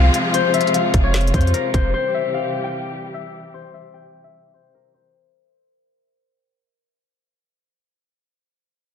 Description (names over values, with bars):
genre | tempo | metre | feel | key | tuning
hip hop, trap | 150 BPM | 4/4 | half-time | unclear | A4 = 440 Hz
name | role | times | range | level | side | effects
concert harp | melody | 0.0-6.9 s | Bb4 to G5 | -22 LUFS | left 6 dB | low-pass filter
rich studio string section | sustained chords | 0.0-5.1 s | C3 to G4 | -24 LUFS | equal | low-pass filter
long sustained 808-style bass | bass | 0.0-1.9 s | F1 to F2 | -17 LUFS | right 1 dB | none
downlifter | sound effects | 0.0-1.9 s | none | -30 LUFS | equal | none
trap drum kit | drums | 0.1-1.8 s | handclaps, hi-hat, kick drum, snare drum | -20 LUFS | equal | none
room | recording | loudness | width
little or no reverb | dense, heavily limited modern master | -17 LUFS | side -8 dB against mid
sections
0.0-5.1 A section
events
fade-out 0.0-5.1; filter sweep 0.0-5.1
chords
0.0 Fm; 1.9 C